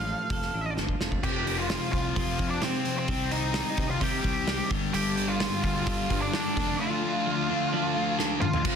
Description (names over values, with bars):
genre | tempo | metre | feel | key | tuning
quiet-loud alternative rock | 129 BPM | 4/4 | straight | unclear | A4 = 439 Hz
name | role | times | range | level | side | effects
octave-fuzz lead guitar | melody | 0.0-8.8 s | C4 to G5 | -31 LUFS | right 1 dB | distortion, slapback echo
twelve-string electric guitar | arpeggios | 0.0-8.6 s | F2 to A4 | -36 LUFS | right 4 dB | wide subtle chorus, slapback echo
fuzz fingered electric bass | bass | 0.0-8.8 s | F1 to C3 | -34 LUFS | equal | overdrive
loose indie drum kit | drums | 0.3-8.8 s | crash cymbal, hi-hat, kick drum, snare drum, toms | -31 LUFS | equal | none
thick fuzz guitar | riff | 1.2-8.8 s | F2 to D4 | -31 LUFS | left 13 dB | distortion
thick fuzz guitar | riff | 4.9-8.8 s | F2 to D4 | -32 LUFS | right 11 dB | distortion
crunchy overdriven guitar | riff | 8.7-8.8 s | F3 to F4 | -33 LUFS | equal | none
room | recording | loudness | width
light reverb, small room ambience | dense, heavily limited modern master | -25 LUFS | side -7 dB against mid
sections
0.0-1.2 A section; 1.2-8.7 B section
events
drum fill 0.8-1.2, 8.2-8.7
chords
0.0 Dm/F; 1.2 F5; 3.1 Cm; 4.7 G5; 6.6 Dm/F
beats
0.30 0.77 | 1.23 1.70 2.16 2.63 | 3.09 3.56 4.02 4.49 | 4.95 5.41 5.88 6.34 | 6.80 7.27 7.73 8.19 | 8.65